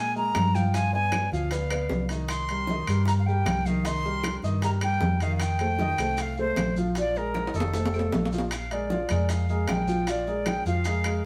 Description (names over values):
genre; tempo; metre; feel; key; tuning
Afro-Cuban jazz; 154 BPM; 4/4; straight; Bb mixolydian; A4 = 440 Hz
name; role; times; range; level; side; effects
bright concert flute; melody; 0.0-11.3 s; A4 to C6; -32 LUFS; equal; none
warm baby grand piano; accompaniment; 0.0-11.3 s; Eb3 to F5; -34 LUFS; equal; none
hollow-body short-scale fingered electric bass; bass; 0.0-11.2 s; F1 to Bb2; -30 LUFS; equal; none
congas; percussion; 0.2-11.2 s; none; -35 LUFS; equal; none
maracas; percussion; 0.2-11.2 s; none; -48 LUFS; equal; none
bongos; percussion; 0.3-11.2 s; none; -40 LUFS; equal; none
claves; percussion; 0.3-11.2 s; none; -44 LUFS; equal; none
timbales; percussion; 0.3-11.2 s; none; -37 LUFS; equal; none
room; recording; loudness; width
wet studio reverb, RT60 0.7 s; band playing live in one room; -26 LUFS; mono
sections
0.0-8.5 A section; 8.5-11.3 B section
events
drum fill 7.4-8.5; flute solo 8.5-11.3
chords
0.0 Bb5; 0.7 G7b9; 2.3 Cm7; 5.4 F9; 7.0 Bb5; 7.7 F; 8.5 Bb6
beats
0.35 | 0.74 1.13 1.52 1.91 | 2.29 2.68 3.07 3.46 | 3.85 4.24 4.63 5.02 | 5.41 5.79 6.18 6.57 | 6.96 7.35 7.74 8.13 | 8.52 8.91 9.30 9.69 | 10.08 10.47 10.86 11.25